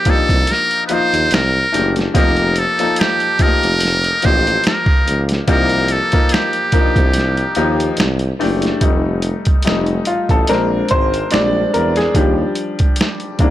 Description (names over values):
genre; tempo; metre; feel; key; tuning
R&B, neo-soul; 72 BPM; 4/4; swing 56% on 16ths; unclear; A4 = 440 Hz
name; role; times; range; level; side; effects
trumpet with metal mute; melody; 0.0-8.0 s; G4 to C5; -17 LUFS; equal; none
clear grand piano; accompaniment; 0.0-13.5 s; Eb3 to D5; -18 LUFS; left 2 dB; none
clear tuba; bass; 0.1-13.5 s; F1 to E2; -20 LUFS; equal; tube saturation
boom bap sampler-style drum kit; drums; 0.1-13.5 s; finger snaps, hi-hat, kick drum, snare drum; -16 LUFS; right 1 dB; none
room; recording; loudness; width
light reverb, small room ambience; blown-out, overdriven recording, overdrive; -13 LUFS; side -13 dB against mid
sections
0.0-8.8 A section; 8.8-13.5 B section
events
grand piano solo 8.8-13.5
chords
0.0 Cm9; 1.3 C9; 2.1 F9sus4; 5.5 Cm9; 8.0 Cadd9; 8.8 F7; 10.5 Bb9; 11.3 Bb13; 12.1 Ebmaj7